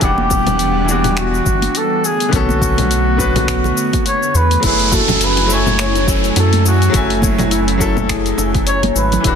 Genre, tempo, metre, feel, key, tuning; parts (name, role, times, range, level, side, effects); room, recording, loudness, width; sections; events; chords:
sunset chillout; 104 BPM; 4/4; swing 57% on 16ths; F# minor; A4 = 440 Hz
warm flugelhorn; melody; 0.0-9.4 s; F#4 to C#5; -18 LUFS; right 1 dB; digital delay
bright baby grand piano; accompaniment; 0.0-9.4 s; D3 to G#5; -22 LUFS; moving between left 8 dB and right 2 dB; auto-pan, ping-pong delay
airy breathy pad; sustained chords; 0.0-9.4 s; B2 to G#5; -20 LUFS; right 1 dB; chorus
round analog bass; bass; 0.0-9.4 s; E1 to F#2; -18 LUFS; equal
deep house drum kit; drums; 0.0-9.4 s; cabasa, congas, crash cymbal, finger snaps, hi-hat; -21 LUFS; left 4 dB; overdrive, soft clipping on snare
electronic kick drum; drums; 0.0-9.4 s; -19 LUFS; equal; overdrive
congas and bongos; percussion; 0.2-9.2 s; -24 LUFS; right 2 dB
concert harp; arpeggios; 4.6-9.4 s; E4 to C#5; -24 LUFS; left 8 dB; ping-pong delay
downlifter; sound effects; 4.6-9.2 s; -22 LUFS; right 2 dB
light reverb, digital ambience; dense, heavily limited modern master; -12 LUFS; side -7 dB against mid
0.0-4.6 A section; 4.6-9.4 B section
0.0 Em9; 2.0 Bm9; 4.6 F#m9